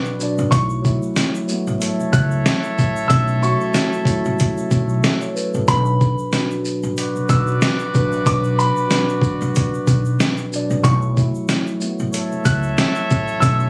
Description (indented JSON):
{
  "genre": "hip hop, boom-bap hip-hop",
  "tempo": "93 BPM",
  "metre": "4/4",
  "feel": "swing 57% on 16ths",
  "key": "B minor",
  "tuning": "A4 = 439 Hz",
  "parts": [
    { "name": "mellow tine electric piano", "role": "accompaniment", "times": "0.0-13.7 s", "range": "B2 to D5", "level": "-25 LUFS", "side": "equal", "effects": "cassette tape, high-pass filter, low-pass filter" },
    { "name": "clear trumpet section", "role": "stabs", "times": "0.0-13.7 s", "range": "F#4 to E5", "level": "-28 LUFS", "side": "equal", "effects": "high-pass filter, low-pass filter, tape echo" },
    { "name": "egg shaker", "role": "percussion", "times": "0.1-13.7 s", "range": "none", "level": "-44 LUFS", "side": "equal", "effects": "none" },
    { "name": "boom bap sampler-style drum kit", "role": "drums", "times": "0.2-13.6 s", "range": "hi-hat, kick drum, shaker, snare drum", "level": "-21 LUFS", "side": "equal", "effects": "none" },
    { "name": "upright bass", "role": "bass", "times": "0.4-13.7 s", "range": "A1 to C#2", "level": "-23 LUFS", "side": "equal", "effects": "none" },
    { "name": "warm upright piano", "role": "melody", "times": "0.5-13.7 s", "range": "B5 to F#6", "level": "-25 LUFS", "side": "equal", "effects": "high-pass filter, low-pass filter" }
  ],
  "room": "little or no reverb",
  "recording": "recorded on a phone in the room, studio ambience, vinyl crackle, compression",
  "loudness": "-19 LUFS",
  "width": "mono",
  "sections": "0.0-13.7 A section",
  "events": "none",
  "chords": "0.0 Bm; 0.5 F#m7; 5.7 Bm; 10.8 F#m7"
}